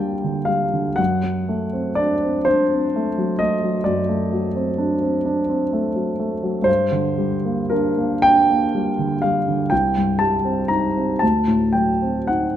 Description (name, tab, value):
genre	classical, romantic nocturne for solo piano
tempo	36-45 BPM (dotted quarters)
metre	12/8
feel	rubato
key	unclear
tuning	A4 = 441 Hz
part	dark grand piano	solo	0.0-12.6 s	C2 to Bb5	-18 LUFS	equal	none
room	moderate recital hall reverb, RT60 1.7 s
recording	close, detailed microphones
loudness	-17 LUFS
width	side -10 dB against mid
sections	0.0-12.6 A section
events	none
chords	0.0 Gm; 1.0 D7/F#; 6.7 Gm; 9.7 Cm; 11.2 D7b9